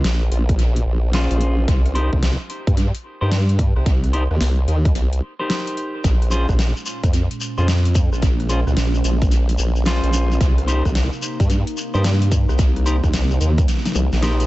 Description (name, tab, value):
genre	glitch hop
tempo	110 BPM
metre	4/4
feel	swing 64% on 16ths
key	unclear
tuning	A4 = 440 Hz
part	formant-sweep wobble bass	bass	0.0-14.5 s	Bb1 to G2	-18 LUFS	equal	chorus
part	dubstep drum kit	drums	0.0-14.5 s	hi-hat, rim click, snare drum, toms	-27 LUFS	left 1 dB	overdrive, tape echo
part	electronic kick drum	drums	0.5-13.7 s	none	-18 LUFS	equal	overdrive
part	clean electric guitar	stabs	1.1-14.5 s	Db4 to C5	-27 LUFS	left 1 dB	sidechain pumping, low-pass filter, tape echo
part	warbly tape-like pad	sustained chords	6.8-14.5 s	Bb2 to Eb4	-28 LUFS	right 1 dB	chorus, built-in reverb, sidechain pumping
part	shekere	percussion	6.0-14.5 s	none	-32 LUFS	left 2 dB	tape echo
room	little or no reverb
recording	echo-heavy mix, nothing above 8.0 kHz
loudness	-16 LUFS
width	side -18 dB against mid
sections	0.0-14.5 A section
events	drum fill 13.7-14.5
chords	0.0 Bbm7; 1.7 Cm7; 6.0 Bbm7; 10.4 Cm7